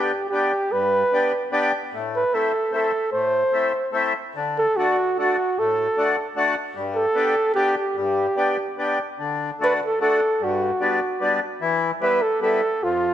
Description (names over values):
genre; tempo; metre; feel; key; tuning
alpine folk, alpine dance band; 149 BPM; 3/4; rubato; G major, D major from 9.2 s; A4 = 441 Hz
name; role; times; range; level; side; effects
mellow flugelhorn; melody; 0.0-13.1 s; F4 to C5; -21 LUFS; right 1 dB; none
accordion; accompaniment; 0.0-13.1 s; F2 to G4; -23 LUFS; left 3 dB; none
room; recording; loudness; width
moderate concert hall reverb, RT60 1.9 s; none; -19 LUFS; side -11 dB against mid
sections
0.0-9.2 A section; 9.2-13.1 B section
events
none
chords
0.0 G; 1.9 Am; 4.4 D; 6.8 Gadd9; 9.2 D; 10.4 Gmaj7; 11.6 Em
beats
0.33 | 0.73 1.14 1.54 | 1.94 2.33 2.73 | 3.13 3.53 3.94 | 4.35 4.76 5.17 | 5.57 5.96 6.36 | 6.76 7.16 7.56 | 7.97 8.38 8.79 | 9.21 9.61 10.02 | 10.42 10.82 11.21 | 11.61 12.02 12.42 | 12.82